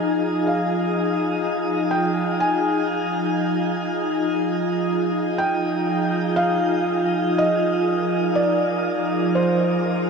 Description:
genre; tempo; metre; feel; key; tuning
ambient; 61 BPM; 4/4; straight; F dorian; A4 = 440 Hz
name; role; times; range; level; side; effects
felt-muted upright piano; melody; 0.0-10.1 s; C5 to Ab5; -24 LUFS; right 1 dB; tape echo
glassy FM pad; sustained chords; 0.0-10.1 s; F3 to Bb5; -21 LUFS; equal; ensemble chorus, built-in reverb
room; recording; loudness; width
wet shimmer reverb, RT60 7.9 s; cassette tape; -19 LUFS; side -5 dB against mid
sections
0.0-6.4 A section; 6.4-10.1 B section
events
none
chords
0.0 Fm7

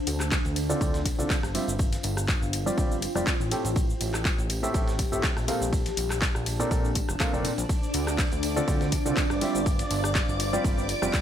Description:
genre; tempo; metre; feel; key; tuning
piano house; 122 BPM; 4/4; swing 54% on 16ths; D minor; A4 = 440 Hz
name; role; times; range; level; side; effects
granular cloud pad; texture; 0.0-11.2 s; D4 to A5; -33 LUFS; equal; built-in reverb, sidechain pumping
fat analog bass; bass; 0.1-11.1 s; F1 to D2; -31 LUFS; equal; sidechain pumping
dusty soul sampler-style drum kit; drums; 0.1-11.2 s; hi-hat, ride cymbal, snare drum; -41 LUFS; right 2 dB; sidechain pumping on cymbals, high-pass filter on cymbals, high-pass filter on snare, sidechain pumping on hats, high-pass filter on hats
house drum kit; drums; 0.1-11.2 s; handclaps, hi-hat, rim click, shaker; -32 LUFS; left 1 dB; none
tambourine; percussion; 0.1-11.2 s; none; -42 LUFS; right 3 dB; none
electronic kick drum; drums; 0.3-11.2 s; none; -27 LUFS; equal; none
clear baby grand piano; riff; 0.7-11.2 s; A2 to G5; -30 LUFS; right 1 dB; sidechain pumping, low-pass filter, ping-pong delay
string machine, violins; sustained chords; 7.7-11.2 s; D5 to D6; -33 LUFS; equal; ensemble chorus, sidechain pumping
room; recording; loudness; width
digital ambience; none; -24 LUFS; side -10 dB against mid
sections
0.0-11.2 A section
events
none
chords
0.0 Dm7; 1.5 G7sus4; 3.5 Am7; 5.5 Bbmaj9; 7.7 Dm7; 9.4 G7sus4

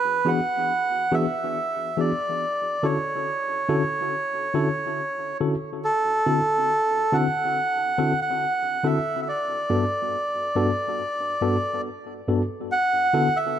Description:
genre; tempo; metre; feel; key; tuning
reggae; 70 BPM; 4/4; straight; D major; A4 = 440 Hz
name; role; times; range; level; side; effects
melodica; melody; 0.0-13.6 s; A4 to F#5; -23 LUFS; right 1 dB; tape echo
tine electric piano; accompaniment; 0.3-13.3 s; G2 to A4; -26 LUFS; left 1 dB; overdrive, fast stereo tremolo, tape echo
room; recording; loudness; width
moderate plate reverb, RT60 2.9 s; dark, warm production; -21 LUFS; side -10 dB against mid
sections
0.0-12.7 A section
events
none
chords
0.0 E7; 2.4 Dmaj7; 5.8 D7; 9.3 Gmaj7; 12.7 D6

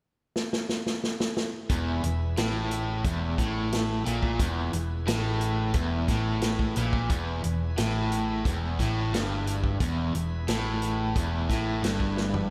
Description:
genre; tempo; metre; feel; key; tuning
classic rock; 89 BPM; 4/4; straight; unclear; A4 = 440 Hz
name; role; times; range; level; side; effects
vintage drum kit; drums; 0.4-12.5 s; hi-hat, kick drum, snare drum, toms; -32 LUFS; equal; none
bright tonewheel organ; sustained chords; 1.7-12.5 s; E4 to E5; -44 LUFS; equal; none
biting overdriven guitar; riff; 1.7-12.5 s; E2 to A#2; -35 LUFS; equal; tremolo
crunchy overdriven guitar; riff; 1.7-12.5 s; E2 to A#2; -34 LUFS; equal; none
hollow-body short-scale fingered electric bass; bass; 1.7-12.5 s; E1 to A#1; -33 LUFS; equal; none
room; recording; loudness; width
moderate lush hall reverb, RT60 2.6 s; big arena sound; -28 LUFS; mono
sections
0.0-1.7 A section; 1.7-12.5 B section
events
drum fill 0.3-1.7, 12.2-12.5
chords
0.0 N.C.; 1.7 E

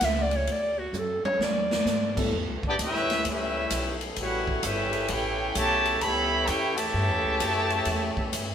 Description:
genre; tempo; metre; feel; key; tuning
jazz, big band swing; 130 BPM; 4/4; swing 65% on 8ths; A major; A4 = 439 Hz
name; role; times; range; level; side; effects
breathy clarinet; melody; 0.0-2.3 s; F#4 to E5; -27 LUFS; equal; none
upright bass; bass; 0.0-8.5 s; G1 to G#2; -33 LUFS; equal; none
swinging big-band drum kit; drums; 0.0-8.5 s; crash cymbal, hi-hat, kick drum, ride cymbal, snare drum, toms; -31 LUFS; equal; none
warm grand piano; accompaniment; 2.2-2.3 s; G3 to A4; -32 LUFS; left 1 dB; none
clear saxophone section; sustained chords; 2.3-8.5 s; C#3 to A4; -37 LUFS; equal; none
clear trumpet section; melody; 2.7-8.5 s; B3 to B5; -26 LUFS; equal; none
warm trombone section; second line; 2.7-8.5 s; C#3 to G4; -33 LUFS; right 1 dB; none
room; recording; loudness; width
wet stone room reverb, RT60 1.4 s; band playing live in one room; -24 LUFS; side -8 dB against mid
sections
0.0-2.3 A section; 2.3-8.5 B section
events
clarinet solo 0.0-2.3; drum fill 0.9-1.9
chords
0.5 D; 1.4 E7; 2.3 A9

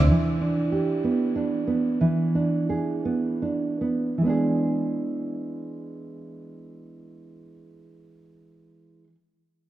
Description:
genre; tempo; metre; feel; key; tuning
pop; 49-65 BPM (dotted quarters); 6/8; straight; unclear; A4 = 440 Hz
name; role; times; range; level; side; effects
nylon-string guitar; accompaniment; 0.0-9.1 s; E3 to G#4; -23 LUFS; right 2 dB; none
room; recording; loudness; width
moderate echo chamber reverb, RT60 2.8 s; dark, warm production; -22 LUFS; side -13 dB against mid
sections
0.1-4.2 A section; 4.2-9.1 B section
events
slowing down 0.1-4.2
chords
0.1 Em7; 2.0 E7

